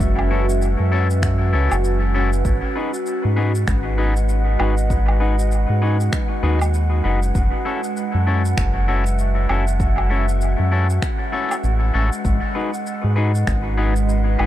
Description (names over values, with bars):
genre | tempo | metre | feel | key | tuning
ambient dub | 98 BPM | 4/4 | swing 59% on 16ths | F# dorian | A4 = 440 Hz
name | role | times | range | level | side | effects
warbly tape-like pad | sustained chords | 0.0-14.5 s | G#3 to E5 | -26 LUFS | right 2 dB | chorus, built-in reverb, phaser
round analog bass | bass | 0.0-14.5 s | F#1 to G#2 | -18 LUFS | equal | none
electronic kick drum | drums | 0.0-13.6 s | none | -22 LUFS | equal | overdrive, studio ambience
electronic shaker, woodblock and finger snaps | drums | 0.0-14.5 s | none | -31 LUFS | right 1 dB | overdrive, studio ambience, dub echo
wind-like tuned noise texture | texture | 0.0-14.5 s | F#5 | -31 LUFS | right 2 dB | built-in reverb
twangy electric guitar | stabs | 0.3-14.5 s | C#4 to B4 | -25 LUFS | left 4 dB | dub echo
room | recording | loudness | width
little or no reverb | dark, warm production | -17 LUFS | side -13 dB against mid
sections
0.0-14.5 A section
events
none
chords
0.0 F#m7; 2.5 G#m7; 7.4 F#m7; 12.2 G#m7